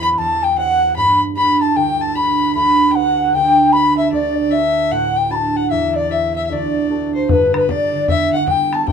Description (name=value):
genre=celtic folk, Celtic hornpipe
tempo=152 BPM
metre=4/4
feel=swing 62% on 8ths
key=unclear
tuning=A4 = 441 Hz
part: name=mellow hollow wooden flute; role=melody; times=0.0-8.9 s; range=B4 to B5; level=-15 LUFS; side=equal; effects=none
part: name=warm fiddle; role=second line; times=0.0-8.9 s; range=B4 to B5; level=-23 LUFS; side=left 8 dB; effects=none
part: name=concert harp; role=accompaniment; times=0.0-8.9 s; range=D1 to C5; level=-20 LUFS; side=right 4 dB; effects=none
part: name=bodhran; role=percussion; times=7.3-8.9 s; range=none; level=-20 LUFS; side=left 3 dB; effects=none
room=moderate small room reverb, RT60 0.5 s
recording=minimal, uncompressed stereo recording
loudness=-13 LUFS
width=side -7 dB against mid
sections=0.0-7.3 A section; 7.3-8.9 A section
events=none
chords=0.0 C/E; 1.0 G; 4.1 D6; 5.7 C/E; 6.5 D; 7.3 G